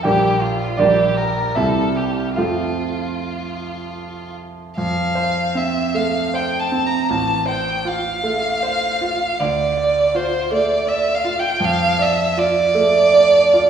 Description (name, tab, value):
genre	classical, romantic duo for violin and grand piano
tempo	73-83 BPM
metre	3/4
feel	rubato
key	F major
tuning	A4 = 440 Hz
part	rich violin	melody	0.0-13.7 s	F4 to Bb5	-18 LUFS	right 1 dB	none
part	bright grand piano	accompaniment	0.0-13.7 s	A1 to G5	-20 LUFS	right 3 dB	none
room	wet scoring stage reverb, RT60 1.6 s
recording	heard from further back in the room, small room reverb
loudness	-16 LUFS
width	side -8 dB against mid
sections	0.0-4.8 A section; 4.8-13.7 B section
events	none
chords	0.1 Gm/Bb; 1.6 C; 2.4 F; 7.1 F/A; 9.4 Dm; 11.6 Dm/F